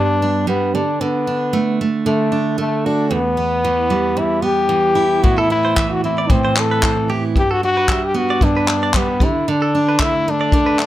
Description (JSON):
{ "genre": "acoustic pop", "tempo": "113 BPM", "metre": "4/4", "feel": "swing 55% on 16ths", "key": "G major", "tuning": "A4 = 440 Hz", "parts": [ { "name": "brilliant trombone", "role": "melody", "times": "0.0-10.9 s", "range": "A3 to A4", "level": "-18 LUFS", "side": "left 2 dB", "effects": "none" }, { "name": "picked steel-string acoustic guitar", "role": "accompaniment", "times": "0.0-10.9 s", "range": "E2 to F#4", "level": "-19 LUFS", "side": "right 4 dB", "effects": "none" }, { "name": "vintage brush drum kit", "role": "drums", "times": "5.2-10.9 s", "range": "handclaps, kick drum", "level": "-18 LUFS", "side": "left 1 dB", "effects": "none" }, { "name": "direct-recorded clean electric guitar", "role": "arpeggios", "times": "5.4-10.8 s", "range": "G4 to E5", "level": "-25 LUFS", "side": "right 4 dB", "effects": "none" } ], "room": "moderate small room reverb, RT60 0.5 s", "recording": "none", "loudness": "-14 LUFS", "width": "side -13 dB against mid", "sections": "0.0-10.9 A section", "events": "none", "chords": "0.0 G; 0.7 D5; 3.1 Em; 5.2 Amadd9; 7.4 G; 9.2 D5", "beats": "0.48 | 1.01 1.54 2.07 2.60 | 3.13 3.65 4.18 4.71 | 5.24 5.77 6.30 6.83 | 7.36 7.89 8.41 8.94 | 9.47 10.00 10.53" }